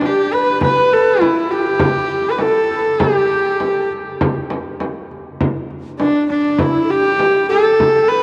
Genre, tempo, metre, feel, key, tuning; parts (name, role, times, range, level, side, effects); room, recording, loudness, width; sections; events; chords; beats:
mongolian traditional, Mongolian folk; 100 BPM; 4/4; straight; G gong mode; A4 = 440 Hz
clear horsehead fiddle; melody; 0.0-8.2 s; D4 to B4; -18 LUFS; equal; analog delay
bright xiao; second line; 0.0-8.2 s; D4 to B4; -21 LUFS; equal
frame drum; percussion; 0.0-8.2 s; -24 LUFS; equal
wet cathedral reverb, RT60 4.3 s; dreamy mix soaked in reverb, cassette tape; -16 LUFS; mono
0.0-5.4 A section; 5.4-8.2 B section
0.01 | 0.61 1.21 1.81 2.40 | 3.00 3.60 4.20 4.79 | 5.39 5.99 6.59 7.18 | 7.78